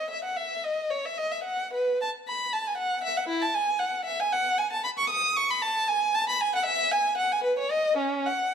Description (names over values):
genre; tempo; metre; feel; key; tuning
classical, baroque-style suite movement for unaccompanied violin; 115 BPM; 3/4; rubato; E major; A4 = 440 Hz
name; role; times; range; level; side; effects
dark violin; solo; 0.0-8.5 s; C#4 to D#6; -24 LUFS; equal; none
room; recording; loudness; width
moderate stone room reverb, RT60 1.3 s; none; -24 LUFS; side -7 dB against mid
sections
0.0-8.5 A section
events
none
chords
none